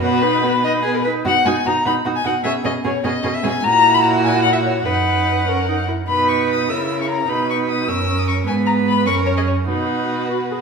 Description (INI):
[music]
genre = quick classical-period movement for string quartet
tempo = 100 BPM (dotted quarters)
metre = 6/8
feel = rubato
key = B major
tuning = A4 = 440 Hz
[part]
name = warm violin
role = melody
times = 0.0-10.6 s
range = B4 to E6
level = -19 LUFS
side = left 4 dB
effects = none
[part]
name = rich violin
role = second line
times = 0.0-10.6 s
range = F#4 to D#5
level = -23 LUFS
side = right 3 dB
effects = none
[part]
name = rich viola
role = accompaniment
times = 0.0-10.6 s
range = B3 to G#4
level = -23 LUFS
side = right 2 dB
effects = none
[part]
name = rich cello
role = bass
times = 0.0-10.6 s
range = F#2 to C#3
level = -22 LUFS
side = right 3 dB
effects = none
[sound]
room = wet stone room reverb, RT60 1.3 s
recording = minimal, uncompressed stereo recording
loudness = -15 LUFS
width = side -5 dB against mid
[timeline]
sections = 0.0-1.3 A section; 1.3-10.6 B section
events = none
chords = 0.0 B; 2.4 C#5/B; 3.6 F#7/A#; 4.9 B/F#; 5.5 F#; 6.1 B; 6.7 A#dim/C#; 7.3 B; 7.9 F#; 8.5 G#m; 9.1 F#; 9.7 B